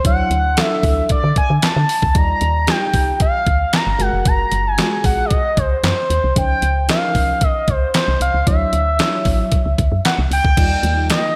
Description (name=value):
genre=early-eighties boogie funk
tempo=114 BPM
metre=4/4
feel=straight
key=unclear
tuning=A4 = 443 Hz
part: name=expressive synth lead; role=melody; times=0.0-11.4 s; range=C5 to Bb5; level=-21 LUFS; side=equal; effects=chorus, slapback echo
part: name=FM electric piano with soft pad layer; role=accompaniment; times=0.0-11.1 s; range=F3 to D5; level=-28 LUFS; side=equal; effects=chorus, phaser, slapback echo
part: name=woody FM bass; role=bass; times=0.0-11.1 s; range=F1 to D3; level=-21 LUFS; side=equal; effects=none
part: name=detuned 8-bit digital drum machine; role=drums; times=0.0-11.2 s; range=crash cymbal, handclaps, hi-hat, kick drum, snare drum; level=-21 LUFS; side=equal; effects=none
part: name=soft string machine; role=sustained chords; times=10.6-11.4 s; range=Eb3 to Eb4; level=-30 LUFS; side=equal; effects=ensemble chorus
part: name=congas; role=percussion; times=10.8-11.2 s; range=none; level=-30 LUFS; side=equal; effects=none
room=moderate lush hall reverb, RT60 1.9 s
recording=big arena sound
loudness=-17 LUFS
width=mono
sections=0.0-10.6 A section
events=none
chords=0.0 Dmaj9; 2.2 Ebmaj9; 4.0 Gbmaj9; 6.4 Dbmaj9; 8.5 Dmaj9; 10.6 Ebmaj9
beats=| 0.05 0.57 1.10 1.62 | 2.15 2.68 3.20 3.73 | 4.26 4.78 5.31 5.83 | 6.36 6.89 7.41 7.94 | 8.47 8.99 9.52 10.05 | 10.57 11.10